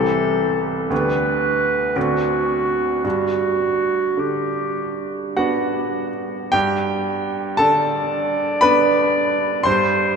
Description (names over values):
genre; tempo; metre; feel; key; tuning
classical, romantic duo for clarinet and grand piano; 48-60 BPM; 3/4; rubato; G major; A4 = 440 Hz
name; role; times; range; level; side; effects
bright clarinet; melody; 0.0-10.2 s; F#4 to D5; -21 LUFS; right 1 dB; none
bright baby grand piano; accompaniment; 0.0-10.2 s; C2 to C6; -19 LUFS; right 1 dB; none
room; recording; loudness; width
wet cathedral reverb, RT60 6.2 s; in a vast, echoing space; -17 LUFS; side -5 dB against mid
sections
0.0-6.5 A section; 6.5-10.2 A section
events
none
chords
0.0 Am/C; 0.9 G/D; 2.0 D7; 3.0 G